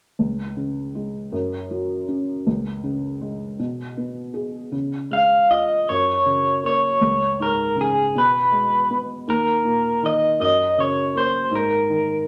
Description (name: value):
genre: folk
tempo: 53 BPM (dotted quarters)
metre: 6/8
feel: straight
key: Db major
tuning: A4 = 440 Hz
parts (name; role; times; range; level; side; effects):
- felt-muted upright piano; accompaniment; 0.2-12.3 s; Db2 to Ab4; -28 LUFS; equal; none
- electric guitar through a small old amp; melody; 5.1-12.3 s; Ab4 to F5; -20 LUFS; equal; tremolo
room: wet studio reverb, RT60 0.7 s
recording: none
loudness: -21 LUFS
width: mono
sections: 0.2-4.7 A section; 4.7-12.3 B section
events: none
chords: 0.2 Db5; 1.3 Gb5; 2.5 Db5; 3.6 Abm/Cb; 4.7 Db; 5.9 Gb; 7.0 Db5; 8.1 Abm/Cb; 9.3 Eb5; 10.4 Gb; 11.5 Absus2